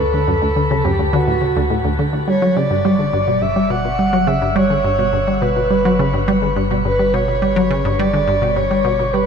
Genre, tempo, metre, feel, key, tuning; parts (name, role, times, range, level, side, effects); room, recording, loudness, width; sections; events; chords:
ambient, sequencer-driven space music; 105 BPM; 4/4; straight; A4 = 440 Hz
breathy flute-like synth lead; melody; 0.0-9.3 s; F#4 to F#5; -18 LUFS; equal; chorus, tape echo
resonant blip pluck; riff; 0.0-9.2 s; D2 to G3; -17 LUFS; equal; chorus, tape echo
warm sub bass; bass; 0.0-9.3 s; G1 to D2; -26 LUFS; equal
moderate shimmer reverb, RT60 7.9 s; -14 LUFS; side -6 dB against mid
0.0-9.3 A section
0.0 D; 2.3 G